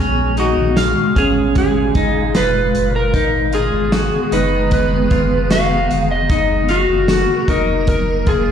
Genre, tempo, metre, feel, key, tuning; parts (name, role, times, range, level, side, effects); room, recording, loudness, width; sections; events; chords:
dream pop; 76 BPM; 4/4; straight; G# dorian; A4 = 440 Hz
granular cloud pad; sustained chords; 0.0-8.5 s; A#2 to E#5; -21 LUFS; equal; built-in reverb
clean electric guitar; arpeggios; 0.0-8.5 s; C#4 to E#5; -20 LUFS; equal; wide subtle chorus, tape echo
saturated sub bass; bass; 0.0-8.5 s; E#1 to A#1; -21 LUFS; equal
electric slide guitar; melody; 0.4-8.5 s; F#4 to E#5; -19 LUFS; left 1 dB; tape echo
loose indie drum kit; drums; 0.4-8.5 s; hi-hat, kick drum, snare drum, tambourine; -19 LUFS; equal
light reverb, small room ambience; played on a big sound system in a bare room, stone room reverb; -13 LUFS; side -8 dB against mid
0.0-8.5 A section
0.0 A#m7; 3.1 G#m; 6.3 F#